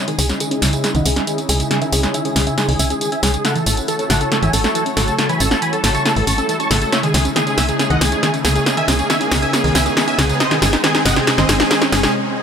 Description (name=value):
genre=uplifting trance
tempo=138 BPM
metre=4/4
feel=straight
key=C# minor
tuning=A4 = 437 Hz
part: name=dense compressed supersaw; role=melody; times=0.0-12.1 s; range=G#4 to C#6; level=-20 LUFS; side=equal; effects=low-pass filter, ping-pong delay
part: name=lush unison pad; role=sustained chords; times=0.0-12.4 s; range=C#3 to C#5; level=-25 LUFS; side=left 1 dB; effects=chorus, vintage 12-bit sampler grit
part: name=wide unison pluck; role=arpeggios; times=0.0-12.1 s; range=B#2 to D#4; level=-23 LUFS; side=right 2 dB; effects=ping-pong delay
part: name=riser and noise sweep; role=sound effects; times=0.4-12.4 s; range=none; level=-26 LUFS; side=right 1 dB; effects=none
part: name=punchy analog drum machine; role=drums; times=0.1-12.1 s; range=hi-hat, snare drum, tambourine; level=-19 LUFS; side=equal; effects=none
part: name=tight sequencer bass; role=bass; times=0.2-12.1 s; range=G#1 to C#2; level=-20 LUFS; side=left 1 dB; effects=tube saturation
room=light reverb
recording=none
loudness=-14 LUFS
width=side -7 dB against mid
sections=0.0-12.4 A section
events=build-up 0.0-12.4; drum fill 0.0-12.1; filter sweep on supersaw synth 0.0-12.4; filter sweep on synth pluck 0.0-12.4; riser 0.4-12.1; break 12.1; noise sweep 12.1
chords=0.0 C#madd9; 3.4 A6; 6.9 C#madd9; 10.4 G#